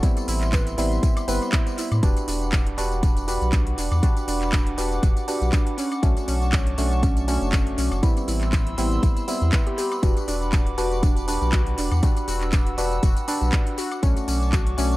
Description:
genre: deep house.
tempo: 120 BPM.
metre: 4/4.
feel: swing 55% on 16ths.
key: E minor.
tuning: A4 = 438 Hz.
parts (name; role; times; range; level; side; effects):
dark analog pad; sustained chords; 0.0-15.0 s; E5 to E6; -34 LUFS; right 1 dB; chorus, sidechain pumping.
warbly dusty pluck; arpeggios; 0.0-14.9 s; C#4 to B4; -31 LUFS; right 1 dB; chorus, cassette tape, sidechain pumping, analog delay.
percussive organ stab; stabs; 0.0-15.0 s; G3 to B4; -28 LUFS; equal; chorus, sidechain pumping, analog delay.
electronic kick drum; drums; 0.0-14.6 s; none; -20 LUFS; equal; none.
house drum kit; drums; 0.0-15.0 s; handclaps, hi-hat, tambourine, woodblock; -31 LUFS; equal; dub echo.
round analog bass; bass; 0.3-15.0 s; E1 to A2; -24 LUFS; equal; sidechain pumping.
room: light reverb.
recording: echo-heavy mix.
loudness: -20 LUFS.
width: side -18 dB against mid.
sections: 0.0-15.0 A section.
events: none.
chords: 0.0 Am9; 2.0 Em9; 5.8 Bm9; 8.0 Am9; 10.0 Em9; 13.8 Bm9.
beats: | 0.03 0.53 1.03 1.53 | 2.03 2.53 3.03 3.53 | 4.03 4.53 5.03 5.53 | 6.03 6.53 7.03 7.53 | 8.03 8.53 9.03 9.53 | 10.03 10.53 11.03 11.53 | 12.03 12.53 13.03 13.53 | 14.03 14.53.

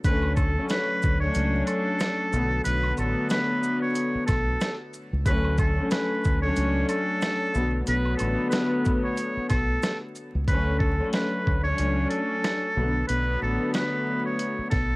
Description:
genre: hip hop, boom-bap hip-hop.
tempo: 92 BPM.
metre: 4/4.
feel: swing 57% on 16ths.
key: D major.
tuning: A4 = 440 Hz.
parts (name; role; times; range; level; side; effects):
trumpet with metal mute; melody; 0.0-15.0 s; A4 to C#5; -28 LUFS; equal; high-pass filter, low-pass filter.
warm studio string section; accompaniment; 0.0-15.0 s; D3 to D4; -27 LUFS; left 1 dB; cassette tape, high-pass filter, low-pass filter.
deep dub fingered electric bass; bass; 0.0-15.0 s; A1 to D2; -26 LUFS; equal; none.
dusty soul sampler-style drum kit; drums; 0.0-14.9 s; hi-hat, kick drum, rim click, shaker, snare drum; -27 LUFS; equal; cassette tape.
maracas and woodblock; percussion; 0.0-10.3 s; none; -43 LUFS; right 3 dB; none.
room: light reverb.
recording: home recording on cassette, vinyl crackle.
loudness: -22 LUFS.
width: side -23 dB against mid.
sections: 0.0-10.5 A section; 10.5-15.0 B section.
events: none.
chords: 0.0 Dmaj7; 2.3 Bm7; 5.3 Dmaj7; 7.5 Bm7; 10.5 Dmaj7; 12.8 Bm7.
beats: | 0.04 0.70 1.35 2.00 | 2.65 3.30 3.96 4.61 | 5.26 5.91 6.57 7.22 | 7.87 8.52 9.17 9.83 | 10.48 11.13 11.78 12.44 | 13.09 13.74 14.39.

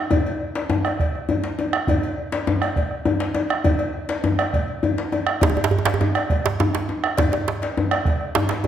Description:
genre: west african traditional, West African drum ensemble.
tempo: 136 BPM (dotted quarters).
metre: 12/8.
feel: straight.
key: none.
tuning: none.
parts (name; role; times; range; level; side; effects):
bombo; percussion; 0.1-8.6 s; none; -24 LUFS; right 2 dB; none.
cowbell; percussion; 0.1-8.7 s; none; -28 LUFS; left 3 dB; none.
djembe; percussion; 0.1-8.7 s; none; -23 LUFS; left 3 dB; none.
djembe; percussion; 5.4-8.7 s; none; -22 LUFS; right 5 dB; none.
room: wet recital hall reverb, RT60 1.4 s.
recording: none.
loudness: -19 LUFS.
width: side -10 dB against mid.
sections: 0.0-5.4 A section; 5.4-8.7 B section.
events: none.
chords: none.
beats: | 0.12 0.56 1.00 1.45 | 1.89 2.33 2.77 3.21 | 3.65 4.10 4.54 4.98 | 5.42 5.86 6.30 6.74 | 7.18 7.62 8.05 8.49.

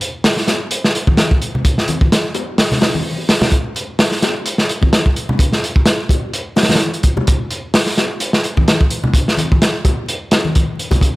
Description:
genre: breakbeat.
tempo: 128 BPM.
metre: 4/4.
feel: swing 56% on 16ths.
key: none.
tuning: none.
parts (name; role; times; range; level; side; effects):
crunchy breakbeat drum kit; drums; 0.0-11.1 s; hi-hat, kick drum, snare drum; -13 LUFS; equal; none.
bongos and congas; percussion; 0.5-11.0 s; none; -22 LUFS; left 2 dB; none.
room: studio ambience.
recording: vinyl crackle.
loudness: -13 LUFS.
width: side -20 dB against mid.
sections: 0.0-11.2 A section.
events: none.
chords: none.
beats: 0.24 0.71 1.18 | 1.65 2.12 2.58 3.05 | 3.52 3.99 4.46 4.93 | 5.40 5.87 6.33 6.80 | 7.27 7.74 8.21 8.68 | 9.15 9.62 10.09 10.55 | 11.02.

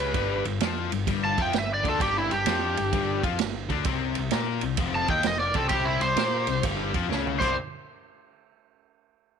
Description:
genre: blues rock power trio and southern rock.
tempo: 129 BPM.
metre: 4/4.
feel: swing 66% on 8ths.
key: unclear.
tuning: A4 = 441 Hz.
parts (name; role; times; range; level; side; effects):
overdriven slide guitar; melody; 0.0-7.5 s; E4 to A5; -27 LUFS; equal; slapback echo.
biting lead guitar; second line; 0.0-7.6 s; C4 to F5; -36 LUFS; right 14 dB; overdrive, slapback echo.
distorted electric guitar; riff; 0.0-7.5 s; F2 to Bb4; -30 LUFS; left 12 dB; distortion.
fuzz picked electric bass; bass; 0.0-7.6 s; F1 to Bb2; -32 LUFS; equal; overdrive.
vintage drum kit; drums; 0.0-7.5 s; crash cymbal, kick drum, ride cymbal, snare drum, toms; -30 LUFS; right 6 dB; none.
room: small room ambience.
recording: 1960s-style stereo with parts hard left and right.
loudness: -23 LUFS.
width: side -7 dB against mid.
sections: 0.0-7.6 A section; 7.6-9.4 B section.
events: drum fill 7.1-7.6.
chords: 0.0 G7(no3); 3.9 Bbsus2/C; 4.8 F5; 5.7 C5; 6.6 Db; 7.3 C; 7.6 N.C..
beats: | 0.14 0.61 1.07 1.54 | 2.00 2.46 2.93 3.39 | 3.85 4.32 4.78 5.25 | 5.71 6.17 6.64 7.10.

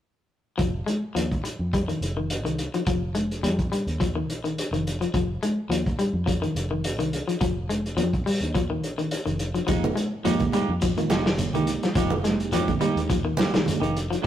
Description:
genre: afrobeat.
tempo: 106 BPM.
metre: 4/4.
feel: swing 54% on 16ths.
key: F minor.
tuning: A4 = 445 Hz.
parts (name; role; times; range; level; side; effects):
electric guitar at the edge of break-up; arpeggios; 0.6-14.3 s; Eb3 to Ab3; -27 LUFS; left 3 dB; none.
fingered electric bass; bass; 0.6-14.3 s; F1 to F2; -30 LUFS; equal; none.
vintage drum kit; drums; 0.6-14.3 s; hi-hat, kick drum, snare drum; -28 LUFS; equal; none.
mellow reed electric piano; accompaniment; 9.7-14.3 s; Ab3 to Ab4; -31 LUFS; right 5 dB; fast tremolo.
semi-hollow electric guitar; stabs; 9.7-14.3 s; Ab3 to G4; -30 LUFS; right 6 dB; none.
congas; percussion; 9.7-14.3 s; none; -30 LUFS; right 4 dB; none.
shekere; percussion; 9.7-14.1 s; none; -36 LUFS; equal; none.
room: light reverb.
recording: rough rehearsal-room recording, tube saturation.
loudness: -23 LUFS.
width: side -11 dB against mid.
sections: 0.6-14.3 A section.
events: none.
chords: 0.6 Fm11.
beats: | 0.59 1.16 1.73 2.30 | 2.87 3.44 4.00 4.57 | 5.14 5.71 6.28 6.84 | 7.41 7.98 8.55 9.12 | 9.68 10.25 10.82 11.39 | 11.96 12.53 13.10 13.67 | 14.24.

